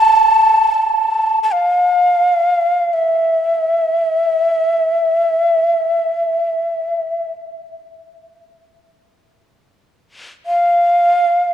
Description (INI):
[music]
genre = japanese traditional, Japanese chamber music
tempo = free time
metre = none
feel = none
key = unclear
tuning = A4 = 440 Hz
[part]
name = breathy shakuhachi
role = solo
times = 0.0-11.5 s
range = E5 to A5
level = -13 LUFS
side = equal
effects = none
[sound]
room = moderate church reverb, RT60 3.0 s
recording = dark, warm production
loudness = -13 LUFS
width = side -10 dB against mid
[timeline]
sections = 0.0-11.5 A section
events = none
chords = none